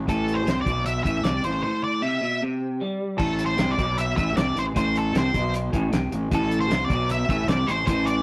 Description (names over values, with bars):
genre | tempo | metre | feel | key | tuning
indie rock | 154 BPM | 4/4 | straight | A minor | A4 = 437 Hz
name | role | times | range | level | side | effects
electric guitar through a small old amp | riff | 0.0-8.2 s | A2 to G3 | -30 LUFS | equal | none
fuzz fingered electric bass | bass | 0.0-8.2 s | A1 to C2 | -29 LUFS | equal | overdrive
octave-fuzz lead guitar | melody | 0.1-8.2 s | A4 to E5 | -28 LUFS | equal | distortion
cloth-damped thuddy drum kit | drums | 0.1-8.2 s | crash cymbal, hi-hat, kick drum, snare drum | -30 LUFS | equal | none
room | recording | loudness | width
moderate stone room reverb, RT60 1.1 s | rough rehearsal-room recording, tube saturation | -24 LUFS | mono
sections
0.0-3.2 A section; 3.2-8.2 B section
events
break 1.6-3.2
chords
0.0 Am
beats
| 0.08 0.47 0.86 1.25 | 1.64 2.03 2.42 2.81 | 3.20 3.59 3.98 4.37 | 4.76 5.15 5.54 5.93 | 6.32 6.71 7.10 7.49 | 7.88